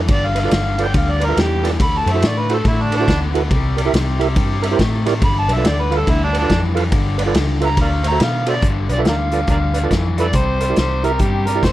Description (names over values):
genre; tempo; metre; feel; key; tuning
electric blues shuffle; 140 BPM; 4/4; swing 63% on 8ths; G mixolydian; A4 = 438 Hz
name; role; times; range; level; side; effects
crunchy overdriven guitar; riff; 0.0-11.7 s; G2 to B3; -24 LUFS; left 5 dB; none
vintage muted fingered electric bass; bass; 0.0-11.7 s; F1 to B2; -20 LUFS; equal; none
overdriven harmonica; melody; 0.1-11.7 s; D4 to B5; -21 LUFS; right 1 dB; slapback echo
vintage drum kit; drums; 0.1-11.7 s; hi-hat, kick drum, ride cymbal, snare drum; -20 LUFS; equal; none
tonewheel organ; accompaniment; 0.4-11.6 s; E4 to F5; -23 LUFS; right 6 dB; slow rotary speaker
room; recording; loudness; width
studio ambience; none; -15 LUFS; side -14 dB against mid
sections
0.0-8.6 A section; 8.6-11.7 B section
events
harmonica solo 0.0-8.6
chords
0.0 G7; 1.8 D7; 3.5 C7; 5.2 G7; 7.8 D7; 8.6 G7; 10.3 C7